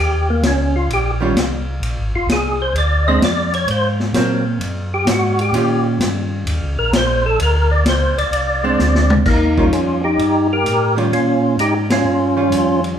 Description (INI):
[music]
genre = soul jazz organ trio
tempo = 129 BPM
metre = 4/4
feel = swing 68% on 8ths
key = Eb mixolydian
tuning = A4 = 442 Hz
[part]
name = percussive tonewheel organ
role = melody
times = 0.0-12.8 s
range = Bb3 to Eb5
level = -17 LUFS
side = equal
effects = slow rotary speaker, chorus vibrato
[part]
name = mellow tonewheel organ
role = bass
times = 0.0-13.0 s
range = F1 to Bb2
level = -19 LUFS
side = equal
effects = slow rotary speaker
[part]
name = vintage drum kit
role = drums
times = 0.4-12.9 s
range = crash cymbal, hi-hat, kick drum, ride cymbal, snare drum, toms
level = -22 LUFS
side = left 1 dB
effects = none
[part]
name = archtop guitar, miked and amplified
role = accompaniment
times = 1.2-13.0 s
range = Eb3 to G4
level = -21 LUFS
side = right 2 dB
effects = none
[sound]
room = moderate large studio reverb, RT60 1.1 s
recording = band playing live in one room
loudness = -14 LUFS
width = side -8 dB against mid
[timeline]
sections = 0.0-9.3 A section; 9.3-13.0 B section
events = tonewheel organ solo 0.0-9.3; drum fill 8.8-9.3; band accent 11.8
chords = 0.0 Eb7; 1.8 Bb9; 3.7 Ab9; 5.5 Eb9; 7.4 Bb9; 9.3 Eb9